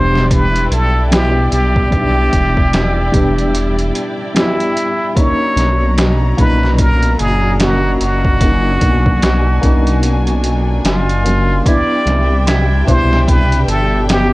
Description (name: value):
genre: trip hop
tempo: 74 BPM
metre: 4/4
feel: swing 60% on 16ths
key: unclear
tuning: A4 = 444 Hz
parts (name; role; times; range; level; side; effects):
- trumpet with plunger mute; melody; 0.0-14.3 s; E4 to D5; -18 LUFS; equal; dub echo
- felt-muted upright piano; accompaniment; 0.0-14.3 s; A#2 to G4; -18 LUFS; left 1 dB; tremolo, vintage 12-bit sampler grit
- clear studio string section; sustained chords; 0.0-14.3 s; F#3 to A#5; -25 LUFS; left 1 dB; none
- dark detuned saw bass; bass; 0.0-14.3 s; E1 to C2; -15 LUFS; equal; none
- bowed-like drone; texture; 0.9-14.3 s; D4; -28 LUFS; right 1 dB; built-in reverb
- trip hop sampler-style drum kit; drums; 0.2-14.3 s; hi-hat, kick drum, snare drum; -16 LUFS; equal; overdrive
- electric guitar with an envelope filter; arpeggios; 11.7-14.3 s; B3 to E4; -26 LUFS; right 2 dB; vintage 12-bit sampler grit, dub echo
room: digital ambience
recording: worn, warbling old tape, cassette tape, warbly pitch drift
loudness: -11 LUFS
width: side -20 dB against mid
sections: 0.0-14.3 A section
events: none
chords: 0.0 Em7; 5.2 Bmaj7; 11.6 Cmaj7